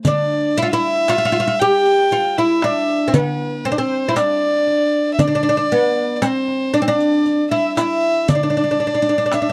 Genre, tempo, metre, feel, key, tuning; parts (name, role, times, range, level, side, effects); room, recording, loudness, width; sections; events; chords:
Arabic maqam ensemble; 117 BPM (eighths); 10/8; straight; A4 = 443 Hz
darbuka; percussion; 0.0-9.5 s; -24 LUFS; equal
riq; percussion; 0.0-9.5 s; -28 LUFS; equal
oud; melody; 0.1-9.5 s; Bb3+50c to G4; -20 LUFS; equal
dark violin; second line; 0.1-9.5 s; Bb4+49c to G5; -22 LUFS; equal
little or no reverb; dry, close 1970s-style studio recording; -17 LUFS; mono
0.0-9.5 A section